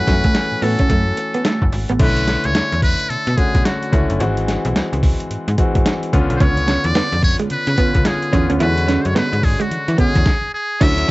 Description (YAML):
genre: R&B, new jack swing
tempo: 109 BPM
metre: 4/4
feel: swing 62% on 16ths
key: unclear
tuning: A4 = 440 Hz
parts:
  - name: trumpet with metal mute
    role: melody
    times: 0.0-11.1 s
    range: F#4 to E5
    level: -21 LUFS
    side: equal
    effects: cassette tape
  - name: clear concert grand piano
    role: accompaniment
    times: 0.0-11.1 s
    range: D3 to F#4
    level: -22 LUFS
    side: left 2 dB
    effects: cassette tape
  - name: slap-like FM bass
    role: bass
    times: 0.0-11.0 s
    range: F#1 to E3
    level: -20 LUFS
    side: equal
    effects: none
  - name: direct-recorded clean electric guitar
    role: riff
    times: 0.1-2.0, 6.4-11.1 s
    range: G#3 to E4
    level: -21 LUFS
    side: right 4 dB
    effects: lush chorus, cassette tape
  - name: boom bap sampler-style drum kit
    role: drums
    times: 0.1-11.1 s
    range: crash cymbal, hi-hat, kick drum, snare drum, tambourine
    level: -18 LUFS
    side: equal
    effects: cassette tape
room: light reverb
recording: home recording on cassette, nothing above 7.9 kHz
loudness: -14 LUFS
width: side -20 dB against mid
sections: 0.0-2.0 A section; 2.0-10.8 B section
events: stop 10.3-10.8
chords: 0.0 F#m7; 2.0 Bm11; 4.2 G#7b13; 6.1 C#7b9; 8.6 E13